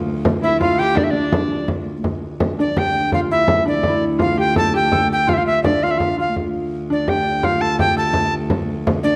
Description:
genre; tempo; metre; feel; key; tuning
medieval dance; 112 BPM (dotted quarters); 6/8; straight; D minor; A4 = 440 Hz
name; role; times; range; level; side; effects
concert harp; second line; 0.0-9.2 s; D4 to A4; -25 LUFS; equal; none
rich viola da gamba; drone; 0.0-9.2 s; D2; -28 LUFS; equal; none
frame drum; percussion; 0.1-9.1 s; none; -25 LUFS; equal; none
bright tenor recorder; melody; 0.4-9.2 s; D5 to A5; -21 LUFS; equal; none
rich fiddle; second line; 0.4-1.6 s; D4 to G4; -28 LUFS; equal; none
room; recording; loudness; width
wet recital hall reverb, RT60 1.3 s; dark, warm production; -18 LUFS; mono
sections
0.0-2.0 A section; 2.0-9.2 B section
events
none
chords
none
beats
0.43 | 0.96 1.50 | 2.04 2.58 | 3.12 3.66 | 4.20 4.73 | 5.27 5.81 | 6.35 6.88 | 7.42 7.96 | 8.49 9.03

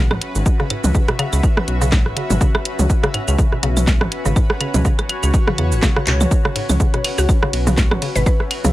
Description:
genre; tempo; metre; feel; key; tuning
minimal techno; 123 BPM; 4/4; swing 56% on 16ths; C# minor; A4 = 440 Hz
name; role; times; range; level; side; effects
mallet-like synth pluck; riff; 0.0-8.7 s; G#2 to C#3; -25 LUFS; left 1 dB; chorus, sidechain pumping, digital delay
rubbery square bass; bass; 0.0-8.7 s; G#1 to E2; -18 LUFS; equal; sidechain pumping
granular cloud pad; texture; 0.0-8.7 s; C#4 to E5; -26 LUFS; left 1 dB; built-in reverb, sidechain pumping
minimal click drum kit; percussion; 0.1-8.7 s; claves, rim click, toms; -21 LUFS; right 2 dB; dub echo
garage drum kit; drums; 0.2-8.7 s; handclaps, hi-hat, ride cymbal, shaker, snare drum; -23 LUFS; right 1 dB; none
electronic kick drum; drums; 0.5-8.4 s; none; -17 LUFS; equal; none
mallet-like synth pluck; melody; 7.2-8.4 s; F#4 to B4; -25 LUFS; left 1 dB; chorus, dub echo
room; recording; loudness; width
light reverb; none; -15 LUFS; side -16 dB against mid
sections
0.0-8.7 A section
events
drum fill 6.1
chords
0.0 C#m7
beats
| 0.46 0.95 1.43 1.92 | 2.41 2.90 3.38 3.87 | 4.36 4.85 5.34 5.82 | 6.31 6.80 7.29 7.78 | 8.26

